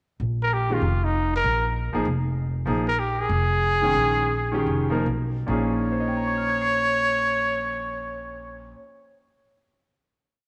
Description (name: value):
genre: modal jazz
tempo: 137-195 BPM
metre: 4/4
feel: swing 62% on 8ths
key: Bb dorian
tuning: A4 = 440 Hz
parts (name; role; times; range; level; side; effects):
- upright bass; bass; 0.2-8.7 s; F1 to Cb2; -29 LUFS; equal; none
- warm trumpet; melody; 0.4-8.8 s; Eb4 to Db5; -26 LUFS; equal; none
- clear concert grand piano; accompaniment; 0.7-9.9 s; Bb2 to C7; -30 LUFS; equal; none
room: wet echo chamber reverb, RT60 1.9 s, small room ambience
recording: none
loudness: -24 LUFS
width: mono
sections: 0.2-5.5 A section; 5.5-9.0 final chord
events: slowing down 2.7-5.5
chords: 0.2 Bbm7; 5.5 Bbm11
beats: | 0.20 0.51 0.82 1.13 | 1.44 1.75 2.06 2.37 | 2.67 2.98 3.30 3.62 | 3.95 4.30 4.67 5.06 | 5.48 5.92 6.36 6.80 | 7.24 7.67 8.11 8.55